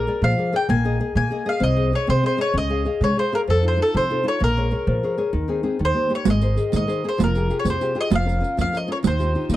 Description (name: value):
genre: italian folk, Italian serenade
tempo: 130 BPM (dotted quarters)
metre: 6/8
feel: straight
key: Ab major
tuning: A4 = 440 Hz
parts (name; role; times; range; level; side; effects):
- mandolin; melody; 0.0-9.6 s; A4 to Ab5; -24 LUFS; equal; none
- nylon-string guitar; accompaniment; 0.0-9.6 s; C3 to F5; -24 LUFS; left 3 dB; none
- upright bass; bass; 0.0-9.6 s; F1 to F3; -22 LUFS; equal; none
- riq; percussion; 6.3-9.6 s; none; -24 LUFS; right 8 dB; none
room: small room ambience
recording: dry, close 1970s-style studio recording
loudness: -18 LUFS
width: side -14 dB against mid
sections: 0.0-9.6 A section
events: none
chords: 0.0 Bb7; 0.7 Ebsus4/Bb; 1.6 Ab/C; 2.6 Db; 3.5 F7; 4.4 Bbm7; 5.3 Ab/Eb; 5.8 Eb; 6.3 Abadd9; 7.2 Fmadd9; 8.1 Bbm/F; 9.0 Ebadd9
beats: 0.23 | 0.69 1.16 | 1.62 2.09 | 2.56 3.02 | 3.49 3.95 | 4.42 4.88 | 5.34 5.80 | 6.27 6.74 | 7.20 7.66 | 8.12 8.58 | 9.04 9.50